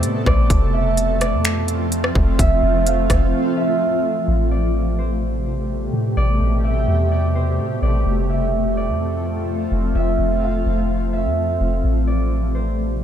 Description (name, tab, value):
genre	hip hop, atmospheric cloud-rap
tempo	127 BPM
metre	4/4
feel	half-time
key	A minor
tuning	A4 = 438 Hz
part	concert harp	melody	0.0-13.0 s	C5 to F5	-24 LUFS	right 4 dB	low-pass filter, digital delay
part	granular cloud pad	sustained chords	0.0-13.0 s	B2 to A4	-22 LUFS	equal	built-in reverb, sidechain pumping
part	soft 808-style bass	bass	0.0-13.0 s	F1 to A2	-20 LUFS	equal	none
part	trap drum kit	drums	0.0-3.2 s	finger snaps, hi-hat, kick drum, rim click	-19 LUFS	equal	overdrive
room	digital ambience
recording	none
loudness	-17 LUFS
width	side -10 dB against mid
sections	0.0-4.3 A section; 4.3-13.0 B section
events	break 3.3-4.3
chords	0.0 Amadd9; 0.5 Fmaj7; 4.3 Am9; 8.1 Fmaj7; 11.8 Am9